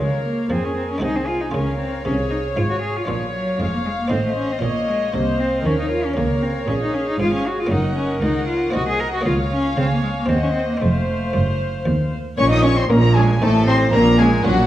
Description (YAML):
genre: classical, baroque-style concerto movement with solo episodes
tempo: 116 BPM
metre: 3/4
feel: straight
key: Db major, Bb minor from 6.2 s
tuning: A4 = 440 Hz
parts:
  - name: rich cello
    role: melody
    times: 0.0-14.5 s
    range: F3 to Bb4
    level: -22 LUFS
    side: left 1 dB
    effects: none
  - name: warm chamber violin section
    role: melody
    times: 0.0-14.7 s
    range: Db5 to Eb6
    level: -30 LUFS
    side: left 2 dB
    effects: none
  - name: warm chamber violin section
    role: second line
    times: 0.0-14.7 s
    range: Gb4 to Gb5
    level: -26 LUFS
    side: left 2 dB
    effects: none
  - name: buff-stop harpsichord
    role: accompaniment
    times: 0.0-14.7 s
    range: C2 to Ab4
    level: -28 LUFS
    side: equal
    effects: none
  - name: warm chamber viola section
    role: accompaniment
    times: 0.0-14.5 s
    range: Db4 to Eb5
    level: -28 LUFS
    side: right 1 dB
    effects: none
  - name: rich chamber double bass section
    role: bass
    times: 0.0-14.7 s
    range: F1 to F2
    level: -24 LUFS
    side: right 2 dB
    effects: none
  - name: warm chamber cello section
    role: bass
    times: 0.0-14.7 s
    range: C2 to F3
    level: -24 LUFS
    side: right 2 dB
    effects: none
room: wet recital hall reverb, RT60 1.6 s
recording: worn, warbling old tape, cassette tape, warbly pitch drift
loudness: -17 LUFS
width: side -13 dB against mid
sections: 0.0-12.4 A section; 12.4-14.7 B section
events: none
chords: 0.0 Db; 1.0 Ab7/C; 1.5 Db; 3.1 Bbm; 4.1 F7/A; 4.6 Bbm; 6.2 Db; 7.7 Gb; 8.7 Cm7b5; 9.3 Bbm/Db; 10.3 Cdim/Eb; 10.8 F; 12.4 Bbm; 13.4 Adim; 13.9 Bbm